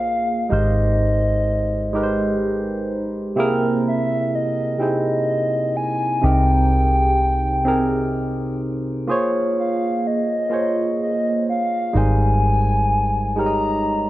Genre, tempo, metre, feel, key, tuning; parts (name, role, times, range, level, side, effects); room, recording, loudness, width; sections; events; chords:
slow six-eight R&B; 42 BPM (dotted quarters); 6/8; straight; A4 = 440 Hz
hollow clarinet-like synth lead; melody; 0.0-14.1 s; Eb5 to Bb5; -22 LUFS; left 1 dB; chorus
barky tine electric piano; accompaniment; 0.0-14.1 s; C3 to Eb5; -21 LUFS; right 1 dB; overdrive, phaser
vintage muted fingered electric bass; bass; 0.0-14.1 s; Ab1 to C2; -20 LUFS; equal
light reverb, digital ambience; -18 LUFS; side -16 dB against mid
0.0-14.1 A section
0.0 Bbm9; 0.5 Abmaj9; 3.4 C7alt; 6.2 Abmaj9/C; 9.1 Bbm9; 11.9 Abmaj9